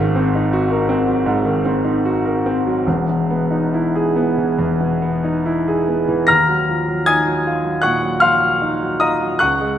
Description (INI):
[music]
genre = classical, impressionist solo piano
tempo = 68-82 BPM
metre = 4/4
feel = rubato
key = unclear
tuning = A4 = 439 Hz
[part]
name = clear concert grand piano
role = solo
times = 0.0-9.8 s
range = E1 to Bb6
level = -15 LUFS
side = equal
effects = none
[sound]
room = wet concert hall reverb, RT60 1.9 s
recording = none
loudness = -15 LUFS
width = side -10 dB against mid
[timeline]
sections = 0.0-6.3 A section; 6.3-9.8 B section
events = none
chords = 0.0 Ab9; 2.9 Emaj7; 6.3 Ebmadd9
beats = 0.53 1.27 2.04 | 2.86 3.72 4.57 5.45 | 6.29 7.09 7.84 8.62 | 9.40